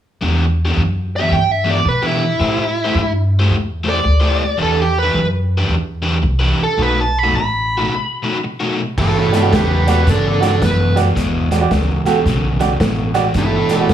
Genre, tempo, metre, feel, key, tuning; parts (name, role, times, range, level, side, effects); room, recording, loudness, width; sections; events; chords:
electric blues shuffle; 110 BPM; 4/4; swing 63% on 8ths; E minor; A4 = 438 Hz
crunchy overdriven guitar; riff; 0.2-13.9 s; E2 to C5; -20 LUFS; left 1 dB
upright bass; bass; 0.2-13.9 s; F#1 to B2; -18 LUFS; equal
smooth overdriven lead guitar; melody; 1.2-13.9 s; E4 to B5; -18 LUFS; right 2 dB; slapback echo
vintage drum kit; drums; 9.0-13.9 s; crash cymbal, hi-hat, kick drum, snare drum; -20 LUFS; right 1 dB
clear upright piano; accompaniment; 9.3-13.9 s; F#4 to D5; -20 LUFS; right 8 dB
light reverb, studio ambience; small room ambience; -14 LUFS; side -10 dB against mid
0.2-9.0 A section; 9.0-13.9 B section
break 7.9-9.0
0.2 Em7; 2.4 Am7; 4.6 Em7; 6.8 B7; 9.0 Em7